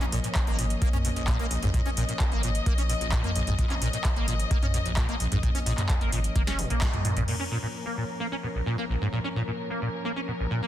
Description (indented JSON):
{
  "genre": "acid house",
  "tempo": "130 BPM",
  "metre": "4/4",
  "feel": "straight",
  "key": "Bb minor",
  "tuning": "A4 = 439 Hz",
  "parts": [
    { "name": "dark studio string section", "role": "sustained chords", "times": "0.0-10.7 s", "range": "F3 to Eb5", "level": "-34 LUFS", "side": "left 2 dB", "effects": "sidechain pumping, low-pass filter" },
    { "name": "acid bass, saw", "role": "riff", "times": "0.0-10.7 s", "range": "Bb1 to Db4", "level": "-30 LUFS", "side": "equal", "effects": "ensemble chorus, sidechain pumping, tape echo" },
    { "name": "warm sub bass", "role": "bass", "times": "0.0-7.2 s", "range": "F1 to Bb1", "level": "-30 LUFS", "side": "equal", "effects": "sidechain pumping" },
    { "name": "booming analog drum machine", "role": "drums", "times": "0.0-7.4 s", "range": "crash cymbal, handclaps, hi-hat, snare drum, toms", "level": "-31 LUFS", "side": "equal", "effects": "overdrive" },
    { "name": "electronic kick drum", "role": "drums", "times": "0.4-6.9 s", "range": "none", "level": "-27 LUFS", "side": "equal", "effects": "overdrive" }
  ],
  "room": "light reverb, digital ambience",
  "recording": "dense, heavily limited modern master",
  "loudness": "-24 LUFS",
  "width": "side -12 dB against mid",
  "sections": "0.0-7.3 A section; 7.3-10.7 B section",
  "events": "drum fill 6.4-7.3; band accent 6.8; filter sweep on string section 7.3-10.7",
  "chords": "0.0 Bbm"
}